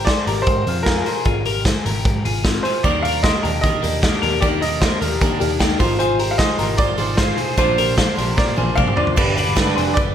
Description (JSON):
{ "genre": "jangly indie pop", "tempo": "152 BPM", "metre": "4/4", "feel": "straight", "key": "Eb major", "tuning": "A4 = 441 Hz", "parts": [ { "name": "clear upright piano", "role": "melody", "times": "0.0-10.0 s", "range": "Bb4 to F5", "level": "-23 LUFS", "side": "right 2 dB", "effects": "tape echo" }, { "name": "twelve-string electric guitar", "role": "arpeggios", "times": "0.0-10.1 s", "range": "C4 to D5", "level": "-23 LUFS", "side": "left 8 dB", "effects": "phaser, tape echo" }, { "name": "vintage muted picked electric bass", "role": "bass", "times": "0.0-10.1 s", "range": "F1 to Eb3", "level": "-24 LUFS", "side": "equal", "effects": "none" }, { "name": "raw garage drum kit", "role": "drums", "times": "0.1-10.1 s", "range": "crash cymbal, hi-hat, kick drum, snare drum, toms", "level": "-19 LUFS", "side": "equal", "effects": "none" }, { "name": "picked steel-string acoustic guitar", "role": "accompaniment", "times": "2.8-10.1 s", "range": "G2 to C5", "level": "-23 LUFS", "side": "right 4 dB", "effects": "none" } ], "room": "light reverb", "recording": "none", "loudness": "-16 LUFS", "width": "side -9 dB against mid", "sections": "0.0-9.2 A section", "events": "drum fill 8.4-9.2", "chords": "0.0 Ab6; 2.8 Ebmaj7; 5.8 Ab6; 7.6 Bbadd9; 9.2 G" }